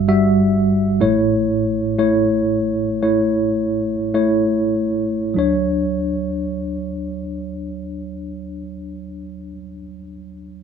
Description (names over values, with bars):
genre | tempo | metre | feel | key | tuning
folk | 47-66 BPM | 4/4 | straight | D major | A4 = 440 Hz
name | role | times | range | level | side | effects
tine electric piano | accompaniment | 0.0-10.6 s | G1 to E5 | -18 LUFS | equal | medium stereo tremolo
room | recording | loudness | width
moderate studio reverb, RT60 0.6 s | minimal, uncompressed stereo recording | -16 LUFS | side -7 dB against mid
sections
0.0-5.4 A section; 5.4-10.4 B section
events
slowing down 0.0-5.4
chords
0.0 Emadd9/G; 1.0 A; 5.4 Dmaj7